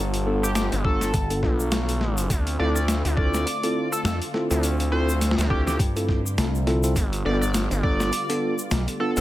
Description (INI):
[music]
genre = glitch hop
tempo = 103 BPM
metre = 4/4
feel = swing 57% on 16ths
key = D dorian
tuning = A4 = 440 Hz
[part]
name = warm analog pad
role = sustained chords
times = 0.0-9.2 s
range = D3 to F4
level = -32 LUFS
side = equal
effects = chorus, vintage 12-bit sampler grit, sidechain pumping
[part]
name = gritty driven synth bass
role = bass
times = 0.0-9.2 s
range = G1 to D2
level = -24 LUFS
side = equal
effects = overdrive
[part]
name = boom bap sampler-style drum kit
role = drums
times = 0.1-9.2 s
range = hi-hat, snare drum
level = -28 LUFS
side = left 1 dB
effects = overdrive
[part]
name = egg shaker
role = percussion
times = 0.1-9.2 s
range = none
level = -35 LUFS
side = left 1 dB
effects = none
[part]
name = mellow tine electric piano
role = stabs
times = 0.3-9.2 s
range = B3 to A4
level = -27 LUFS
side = equal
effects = sidechain pumping, tape echo
[part]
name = sync lead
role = melody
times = 0.4-9.2 s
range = G4 to D5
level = -31 LUFS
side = equal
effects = chorus, tape echo
[part]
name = electronic kick drum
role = drums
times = 0.8-8.0 s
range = none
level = -24 LUFS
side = equal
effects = overdrive
[part]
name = slap bass with an envelope filter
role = bass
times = 1.1-8.9 s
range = G1 to G2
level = -25 LUFS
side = equal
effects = tube saturation
[sound]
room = little or no reverb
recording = none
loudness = -21 LUFS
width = side -15 dB against mid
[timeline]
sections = 0.0-9.2 A section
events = none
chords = 0.0 G7; 2.3 Dm7; 7.0 G7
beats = 0.56 1.14 1.72 | 2.30 2.88 3.47 4.05 | 4.63 5.21 5.80 6.38 | 6.96 7.54 8.13 8.71